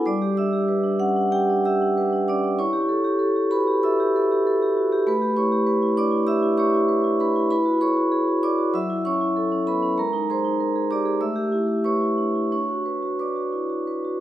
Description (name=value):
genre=classical, contemporary piece for solo vibraphone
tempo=96 BPM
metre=4/4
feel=uneven beats, rubato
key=unclear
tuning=A4 = 439 Hz
part: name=vibraphone with medium hard mallets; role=solo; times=0.0-14.2 s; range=F#3 to E6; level=-20 LUFS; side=equal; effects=none
room=wet recital hall reverb, RT60 1.6 s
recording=recorded in a church or concert hall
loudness=-20 LUFS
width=side -13 dB against mid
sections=0.0-14.2 A section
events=none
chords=0.1 G6; 2.6 Emadd9; 5.1 A9; 7.5 E9; 8.7 F#m7; 10.0 G#add9; 11.2 A9sus4; 12.5 D6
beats=| 0.06 0.69 1.33 1.97 | 2.58 3.20 3.84 4.47 | 5.07 5.68 6.29 6.89 | 7.51 8.12 8.74 9.36 | 9.98 10.60 11.22 11.86 | 12.52 13.19 13.86